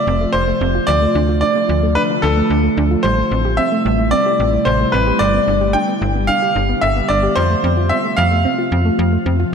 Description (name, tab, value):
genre	synth-pop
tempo	111 BPM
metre	4/4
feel	straight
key	G mixolydian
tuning	A4 = 441 Hz
part	bright grand piano	melody	0.0-9.5 s	A4 to G5	-17 LUFS	equal	analog delay
part	ethereal airy pad	sustained chords	0.0-9.5 s	C3 to G4	-20 LUFS	equal	ensemble chorus, built-in reverb
part	soft round pluck	arpeggios	0.0-9.5 s	F3 to G4	-22 LUFS	right 2 dB	chorus, analog delay
part	slap-like FM bass	bass	0.1-9.4 s	F1 to F2	-18 LUFS	equal	none
room	wet lush hall reverb, RT60 2.9 s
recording	dreamy mix soaked in reverb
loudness	-13 LUFS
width	side -6 dB against mid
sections	0.0-9.5 A section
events	none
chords	0.0 F; 0.9 Dm; 3.0 Am7; 5.2 G; 7.4 F